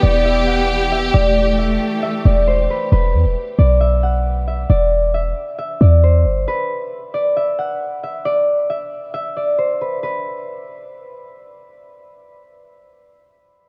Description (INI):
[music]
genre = hip hop, trap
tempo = 135 BPM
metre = 4/4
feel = half-time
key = E minor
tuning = A4 = 440 Hz
[part]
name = concert harp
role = melody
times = 0.0-12.1 s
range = B4 to F#5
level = -22 LUFS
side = equal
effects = low-pass filter
[part]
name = dark symphonic string section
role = sustained chords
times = 0.0-2.9 s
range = E3 to G4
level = -22 LUFS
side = equal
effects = none
[part]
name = clean 808-style bass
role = bass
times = 0.0-6.5 s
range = E1 to E2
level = -17 LUFS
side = equal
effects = none
[sound]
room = small room ambience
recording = none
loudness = -17 LUFS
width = mono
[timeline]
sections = 0.0-2.9 A section; 2.9-10.0 B section; 10.0-13.6 C section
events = none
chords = 0.0 Em; 2.9 E5; 6.5 N.C.